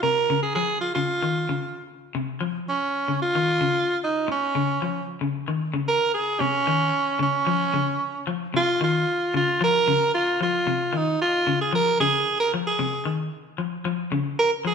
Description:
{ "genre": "afrobeat", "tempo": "113 BPM", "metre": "4/4", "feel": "straight", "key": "Bb minor", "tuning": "A4 = 444 Hz", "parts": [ { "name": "raspy tenor saxophone", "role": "melody", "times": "0.0-14.7 s", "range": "Db4 to Bb4", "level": "-22 LUFS", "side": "right 2 dB", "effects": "none" }, { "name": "electric guitar at the edge of break-up", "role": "arpeggios", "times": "0.0-14.7 s", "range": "C3 to F3", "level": "-27 LUFS", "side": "left 5 dB", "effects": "spring reverb" } ], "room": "wet stone room reverb, RT60 1.4 s", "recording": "band playing live in one room", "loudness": "-21 LUFS", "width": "side -6 dB against mid", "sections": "0.0-6.4 A section; 6.4-14.7 B section", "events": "none", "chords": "0.0 Bbmadd9/C (rootless)" }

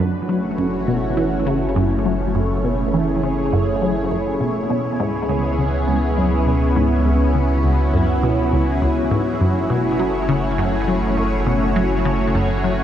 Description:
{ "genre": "ambient, sequencer-driven space music", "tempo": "102 BPM", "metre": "4/4", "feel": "straight", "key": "F# minor", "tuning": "A4 = 440 Hz", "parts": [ { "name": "lush unison pad", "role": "sustained chords", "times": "0.0-12.8 s", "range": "A3 to C#5", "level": "-20 LUFS", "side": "equal", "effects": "chorus, phaser" }, { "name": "resonant blip pluck", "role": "riff", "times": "0.0-12.7 s", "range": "C#2 to F#3", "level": "-21 LUFS", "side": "equal", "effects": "chorus, phaser, tape echo" }, { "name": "round analog bass", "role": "bass", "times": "0.0-12.8 s", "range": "F#1 to C#2", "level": "-23 LUFS", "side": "equal", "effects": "none" }, { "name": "bubbling stepped-filter texture", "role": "texture", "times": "0.0-12.8 s", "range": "G#4", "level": "-38 LUFS", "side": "equal", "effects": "none" } ], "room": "wet huge ambient reverb, RT60 7.7 s", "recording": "dark, warm production", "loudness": "-16 LUFS", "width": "side -10 dB against mid", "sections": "0.0-12.8 A section", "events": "none", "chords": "0.0 F#m7; 4.7 C#m7; 9.4 F#m7" }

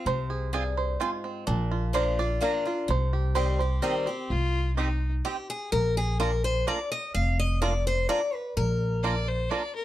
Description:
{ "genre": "bluegrass", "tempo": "127 BPM", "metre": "3/4", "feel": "straight", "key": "unclear", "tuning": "A4 = 435 Hz", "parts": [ { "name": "bluegrass banjo", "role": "melody", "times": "0.0-9.6 s", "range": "C4 to D5", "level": "-32 LUFS", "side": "right 6 dB", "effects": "none" }, { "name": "picked steel-string acoustic guitar", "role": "accompaniment", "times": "0.0-9.2 s", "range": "G2 to F5", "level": "-29 LUFS", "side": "left 3 dB", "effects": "none" }, { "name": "upright bass", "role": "bass", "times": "0.1-9.5 s", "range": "F1 to C2", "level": "-27 LUFS", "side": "equal", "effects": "none" }, { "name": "mandolin", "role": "stabs", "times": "0.5-9.6 s", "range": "Bb3 to Bb5", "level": "-33 LUFS", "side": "right 5 dB", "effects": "none" }, { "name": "clear fiddle", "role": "second line", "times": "4.3-5.1, 9.0-9.8 s", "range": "Eb4 to D5", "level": "-32 LUFS", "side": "left 2 dB", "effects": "none" } ], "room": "light reverb", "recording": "dark, warm production", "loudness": "-25 LUFS", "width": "side -14 dB against mid", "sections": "0.0-4.3 A section; 4.3-9.8 A section", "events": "five-string banjo solo 0.0-4.3; steel-string acoustic guitar solo 4.3-9.8", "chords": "0.0 Fm; 1.5 Bb; 2.9 Cm; 5.7 Bb" }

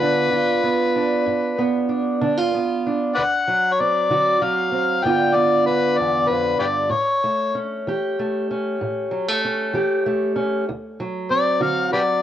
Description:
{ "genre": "acoustic country blues, solo or duo", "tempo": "64 BPM (dotted quarters)", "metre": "12/8", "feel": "straight", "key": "unclear", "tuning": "A4 = 440 Hz", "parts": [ { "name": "overdriven harmonica", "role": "melody", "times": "0.0-12.2 s", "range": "G4 to G5", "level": "-19 LUFS", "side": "left 3 dB", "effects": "cassette tape" }, { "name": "fingerpicked steel-string acoustic guitar", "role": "accompaniment", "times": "0.0-12.2 s", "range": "D2 to G4", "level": "-21 LUFS", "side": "right 2 dB", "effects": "none" } ], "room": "moderate spring reverb, RT60 1.6 s, studio ambience", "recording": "home recording on cassette", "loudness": "-18 LUFS", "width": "side -11 dB against mid", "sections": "0.0-10.7 A section; 10.7-12.2 B section", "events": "harmonica solo 10.7-12.2", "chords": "0.0 G7; 3.2 D7; 5.0 G7; 6.9 A7; 10.7 D7" }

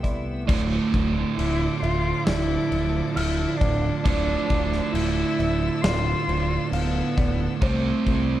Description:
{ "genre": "post-rock", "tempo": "67 BPM", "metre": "4/4", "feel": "straight", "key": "D dorian", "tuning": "A4 = 440 Hz", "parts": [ { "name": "muted cello", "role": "melody", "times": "0.0-8.4 s", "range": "A3 to F4", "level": "-26 LUFS", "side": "left 1 dB", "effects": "plate reverb" }, { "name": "clear studio string section", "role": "sustained chords", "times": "0.0-8.4 s", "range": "F3 to E6", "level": "-36 LUFS", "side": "left 3 dB", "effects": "none" }, { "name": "felt-muted upright piano", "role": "arpeggios", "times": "0.0-8.4 s", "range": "C5 to F6", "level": "-36 LUFS", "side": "right 3 dB", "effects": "tape echo, plate reverb" }, { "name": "twelve-string electric guitar", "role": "arpeggios", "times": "0.0-0.5 s", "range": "A3 to E4", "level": "-42 LUFS", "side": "left 2 dB", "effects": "ensemble chorus, tape echo" }, { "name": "growling fingered electric bass", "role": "bass", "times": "0.0-8.4 s", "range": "D1 to C2", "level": "-27 LUFS", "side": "left 1 dB", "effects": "overdrive" }, { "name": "huge arena drum kit", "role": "drums", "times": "0.0-8.3 s", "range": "crash cymbal, hi-hat, kick drum, snare drum", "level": "-28 LUFS", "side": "left 1 dB", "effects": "none" }, { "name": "biting overdriven guitar", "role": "riff", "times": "0.5-8.4 s", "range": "D2 to C4", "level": "-27 LUFS", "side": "right 7 dB", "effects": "none" } ], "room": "light reverb", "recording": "cassette tape", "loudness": "-21 LUFS", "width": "side -13 dB against mid", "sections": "0.5-8.4 A section", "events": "none", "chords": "0.5 Dmadd9; 7.6 C5" }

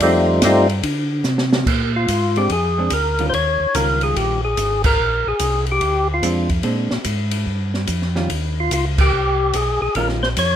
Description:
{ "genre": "soul jazz organ trio", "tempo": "145 BPM", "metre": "4/4", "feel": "swing 66% on 8ths", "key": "unclear", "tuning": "A4 = 438 Hz", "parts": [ { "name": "percussive tonewheel organ", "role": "melody", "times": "0.0-10.6 s", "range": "G3 to Db5", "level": "-18 LUFS", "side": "left 1 dB", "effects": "slow rotary speaker, overdrive, plate reverb" }, { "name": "mellow tonewheel organ", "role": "bass", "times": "0.0-10.6 s", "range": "Ab1 to D3", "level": "-21 LUFS", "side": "equal", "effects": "chorus vibrato, slow rotary speaker" }, { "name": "open jazz drum kit", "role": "drums", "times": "0.0-10.5 s", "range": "crash cymbal, hi-hat, kick drum, ride cymbal, snare drum", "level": "-23 LUFS", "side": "equal", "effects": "none" }, { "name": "vintage hollow-body jazz guitar", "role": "accompaniment", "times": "2.4-10.2 s", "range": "Eb3 to F4", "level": "-26 LUFS", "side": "right 2 dB", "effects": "plate reverb" } ], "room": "moderate studio reverb, RT60 0.6 s", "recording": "rough home demo mix", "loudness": "-16 LUFS", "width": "side -10 dB against mid", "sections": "0.0-1.7 A section; 1.7-10.6 B section", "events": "drum fill 1.3-1.7; band accent 4.8, 8.9", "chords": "0.0 F9; 1.7 Bb9; 3.3 Eb9; 5.0 Bb9; 8.3 Eb9" }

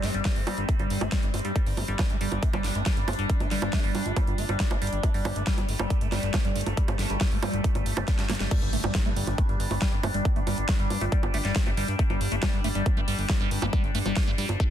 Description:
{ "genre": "psychedelic trance", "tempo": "138 BPM", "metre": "4/4", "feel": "straight", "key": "unclear", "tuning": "A4 = 440 Hz", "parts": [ { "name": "overtone-sweeping drone", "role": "sustained chords", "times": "0.0-14.7 s", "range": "G3 to D4", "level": "-34 LUFS", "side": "left 1 dB", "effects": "chorus, built-in reverb, phaser, sidechain pumping" }, { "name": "liquid acid bass", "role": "riff", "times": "0.0-14.6 s", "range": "G3 to Bb3", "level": "-32 LUFS", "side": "moving between left 3 dB and right 4 dB", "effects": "phaser, auto-pan, sidechain pumping, tape echo" }, { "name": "fat analog bass", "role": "bass", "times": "0.0-14.6 s", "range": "G1 to G2", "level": "-30 LUFS", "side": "equal", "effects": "none" }, { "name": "big-room dance drum kit", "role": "drums", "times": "0.0-14.7 s", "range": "bongos, crash cymbal, hi-hat, snare drum", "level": "-32 LUFS", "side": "right 2 dB", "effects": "none" }, { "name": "electronic kick drum", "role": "drums", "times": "0.3-14.7 s", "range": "none", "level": "-26 LUFS", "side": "equal", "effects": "none" }, { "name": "vowel-sweep wobble bass", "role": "second line", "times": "3.0-14.7 s", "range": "F3 to F4", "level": "-44 LUFS", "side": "right 5 dB", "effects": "none" }, { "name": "impact", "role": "sound effects", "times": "8.6-10.3 s", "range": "none", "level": "-38 LUFS", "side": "equal", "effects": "none" } ], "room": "little or no reverb", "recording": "dense, heavily limited modern master", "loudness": "-24 LUFS", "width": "side -10 dB against mid", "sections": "0.0-8.5 A section; 8.5-14.7 B section", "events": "drum fill 8.1-8.5; drop 8.5-14.7; impact 8.5-10.3", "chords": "0.0 G5" }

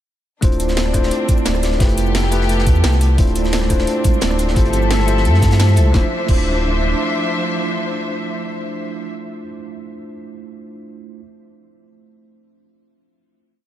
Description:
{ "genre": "liquid drum and bass", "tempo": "174 BPM", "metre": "4/4", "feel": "straight", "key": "D dorian", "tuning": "A4 = 441 Hz", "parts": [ { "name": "bell-like tine electric piano", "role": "accompaniment", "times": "0.4-11.2 s", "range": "A3 to C5", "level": "-23 LUFS", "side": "right 1 dB", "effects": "auto-pan, ping-pong delay" }, { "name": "warm studio string section", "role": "sustained chords", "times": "0.4-9.1 s", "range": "F3 to E5", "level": "-24 LUFS", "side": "left 1 dB", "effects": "none" }, { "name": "Celtic harp", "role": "arpeggios", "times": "0.4-9.3 s", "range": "B3 to A4", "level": "-29 LUFS", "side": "left 3 dB", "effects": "ping-pong delay" }, { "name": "sub bass with octave", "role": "bass", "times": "0.4-6.9 s", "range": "D1 to G2", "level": "-17 LUFS", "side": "equal", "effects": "none" }, { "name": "crunchy breakbeat drum kit", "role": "drums", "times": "0.4-5.8 s", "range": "hi-hat, snare drum", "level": "-30 LUFS", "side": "right 1 dB", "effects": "high-pass filter on hats, high-pass filter on snare, high-pass filter on room" }, { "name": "drum and bass drum kit", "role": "drums", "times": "0.4-6.4 s", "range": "crash cymbal, hi-hat, rim click, shaker, snare drum", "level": "-26 LUFS", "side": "equal", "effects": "none" }, { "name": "electronic kick drum", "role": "drums", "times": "0.4-6.4 s", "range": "none", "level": "-16 LUFS", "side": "equal", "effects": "none" }, { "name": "congas", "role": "percussion", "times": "3.6-5.9 s", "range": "none", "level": "-32 LUFS", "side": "left 1 dB", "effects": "none" } ], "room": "light reverb, small room ambience", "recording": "none", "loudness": "-14 LUFS", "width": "side -12 dB against mid", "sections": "0.4-5.9 drop; 5.9-8.7 final chord", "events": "drop 0.4-5.9", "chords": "0.4 Dm9; 1.8 Fmaj9#11; 3.2 Dm9; 4.6 G13sus4; 5.9 Dm9" }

